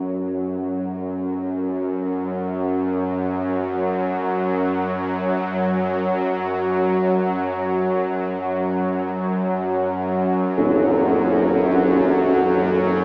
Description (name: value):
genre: dark ambient drone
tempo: free time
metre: none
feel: none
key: unclear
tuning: A4 = 440 Hz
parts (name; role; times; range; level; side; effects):
- bowed-like drone; drone; 0.0-13.0 s; F#2 to F#3; -22 LUFS; equal; built-in reverb
- tam-tam; percussion; 10.6-10.8 s; none; -21 LUFS; equal; low-pass filter on cymbals
room: wet huge ambient reverb, RT60 8.1 s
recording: small speaker sound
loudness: -21 LUFS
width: mono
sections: 0.0-13.0 A section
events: fade-in on drum 0.0-13.0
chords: none